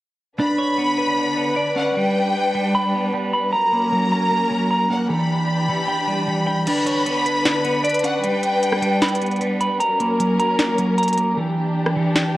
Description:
hip hop, trap; 153 BPM; 4/4; half-time; B harmonic minor; A4 = 440 Hz
bright studio violin section; second line; 0.4-9.4 s; F#5 to B5; -24 LUFS; left 1 dB; tape echo
warm symphonic string section; sustained chords; 0.4-12.4 s; D3 to B4; -24 LUFS; left 1 dB
clean electric guitar; arpeggios; 0.4-12.4 s; E3 to B5; -20 LUFS; right 1 dB; spring reverb, low-pass filter, tape echo
trap drum kit; drums; 6.7-12.2 s; crash cymbal, hi-hat, rim click, snare drum; -23 LUFS; equal
moderate digital room reverb, RT60 1.0 s, small room ambience; worn, warbling old tape, cassette tape, warbly pitch drift; -17 LUFS; side -16 dB against mid
0.4-6.7 A section; 6.7-12.4 B section
kick muted 6.7-12.4; hi-hats muted 11.4-12.4
0.4 Bmadd9; 2.0 G; 3.5 F#; 5.1 Em7; 6.7 Bmadd9; 8.2 G; 9.8 F#; 11.4 Em7

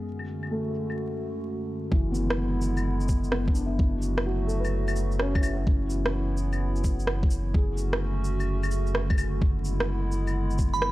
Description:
future garage; 128 BPM; 4/4; swing 66% on 16ths; A4 = 441 Hz
dark upright piano; accompaniment; 0.0-9.4 s; E3 to B4; -33 LUFS; left 2 dB; sidechain pumping, analog delay
warbly tape-like pad; sustained chords; 0.0-10.9 s; F#2 to F#4; -33 LUFS; right 1 dB; chorus, built-in reverb, vintage 12-bit sampler grit, sidechain pumping
electronic claves, shaker and rim click; drums; 0.2-10.9 s; -31 LUFS; right 1 dB; overdrive, low-pass filter on perc, low-pass filter on snare
soft dub sub bass; bass; 1.9-10.9 s; F#1; -28 LUFS; equal; sidechain pumping
electronic kick drum; drums; 1.9-10.7 s; -24 LUFS; equal; overdrive
glassy synth bell; melody; 10.7-10.9 s; B5; -24 LUFS; right 4 dB; chorus, tremolo
light reverb; dry, gritty hardware recording, vinyl crackle; -24 LUFS; side -17 dB against mid
0.0-1.9 A section; 1.9-10.9 B section
0.0 Dmaj7/F#; 1.9 E7/F#; 3.8 F#m; 5.7 C#m7/F#; 7.5 Dmaj7/F#; 9.4 E7/F#

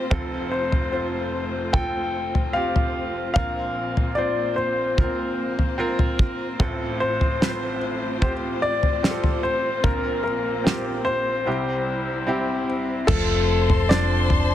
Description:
pop ballad; 74 BPM; 4/4; straight; F major; A4 = 440 Hz
bright upright piano; accompaniment; 0.0-14.5 s; F1 to C5; -27 LUFS; right 1 dB
warm studio string section; sustained chords; 0.0-14.5 s; G3 to C6; -31 LUFS; left 3 dB
damped 70s drum kit; drums; 0.1-14.5 s; crash cymbal, kick drum, snare drum, toms; -22 LUFS; equal
clear concert grand piano; melody; 0.5-14.5 s; A3 to G5; -25 LUFS; left 2 dB; ping-pong delay
fingered electric bass; bass; 13.1-14.5 s; F1; -22 LUFS; right 1 dB
light reverb, small room ambience; dense, heavily limited modern master; -21 LUFS; side -11 dB against mid
0.0-13.1 A section; 13.1-14.5 B section
0.1 F; 3.4 Bbsus2; 6.6 F/A; 9.8 Bbsus2; 11.5 C; 13.1 F

